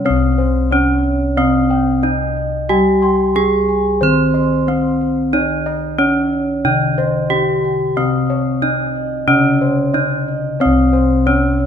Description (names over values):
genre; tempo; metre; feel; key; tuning
Javanese gamelan; 91 BPM; 4/4; straight; C pelog; A4 = 440 Hz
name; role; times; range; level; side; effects
gamelan-type bronze metallophone; melody; 0.0-11.7 s; C4 to C5; -16 LUFS; right 1 dB; none
gamelan-type bronze metallophone; accompaniment; 0.0-11.7 s; C3 to C4; -22 LUFS; left 3 dB; none
gamelan-type bronze metallophone; arpeggios; 0.0-11.7 s; C5 to C6; -25 LUFS; right 2 dB; none
gamelan-type bossed gongs; bass; 0.0-11.7 s; C2 to G4-30c; -20 LUFS; left 1 dB; none
gamelan-type bossed gongs; arpeggios; 0.1-11.6 s; C5 to C6; -25 LUFS; left 4 dB; none
room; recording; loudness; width
moderate recital hall reverb, RT60 1.8 s; minimal, uncompressed stereo recording; -13 LUFS; side -8 dB against mid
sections
0.1-10.6 A section; 10.6-11.7 A section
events
none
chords
none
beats
| 0.06 0.72 1.38 2.04 | 2.70 3.35 4.01 4.67 | 5.33 5.99 6.65 7.31 | 7.97 8.63 9.29 9.95 | 10.61 11.27